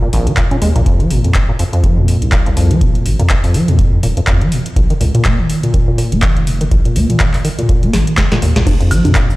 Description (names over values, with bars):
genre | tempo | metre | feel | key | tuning
acid house | 123 BPM | 4/4 | swing 57% on 16ths | F minor | A4 = 441 Hz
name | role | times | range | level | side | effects
deep acid bass | riff | 0.0-9.3 s | Bb1 to Db4 | -16 LUFS | equal | sidechain pumping, tape echo
saturated sub bass | bass | 0.0-9.1 s | Eb1 to Bb2 | -15 LUFS | equal | sidechain pumping
booming analog drum machine | drums | 0.1-9.4 s | congas, crash cymbal, handclaps, hi-hat, ride cymbal, shaker, snare drum, woodblock | -20 LUFS | equal | none
electronic kick drum | drums | 0.4-9.3 s | none | -15 LUFS | equal | none
room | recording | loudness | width
digital ambience | played on a big sound system in a bare room, large studio reverb | -11 LUFS | side -19 dB against mid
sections
0.0-8.7 A section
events
drum fill 7.9-8.7; band accent 8.5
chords
0.0 Bb7(no3); 0.9 F5; 4.8 Bb5; 8.7 Fm